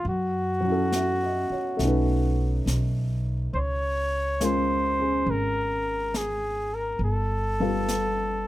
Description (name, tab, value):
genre	jazz ballad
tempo	69 BPM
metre	4/4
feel	swing 68% on 8ths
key	unclear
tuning	A4 = 440 Hz
part	warm flugelhorn	melody	0.0-8.5 s	Gb4 to Db5	-27 LUFS	equal	none
part	dark baby grand piano	accompaniment	0.0-8.5 s	Gb3 to Fb5	-28 LUFS	left 1 dB	none
part	upright bass	bass	0.0-8.4 s	G1 to Gb2	-28 LUFS	equal	none
part	jazz brush drum kit	drums	0.1-8.5 s	brushed snare drum, hi-hat, snare drum	-35 LUFS	left 1 dB	none
room	little or no reverb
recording	close, detailed microphones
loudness	-23 LUFS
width	side -15 dB against mid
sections	0.0-8.5 A section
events	none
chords	0.1 Gbm7; 1.8 B9; 3.5 Db6; 7.0 G9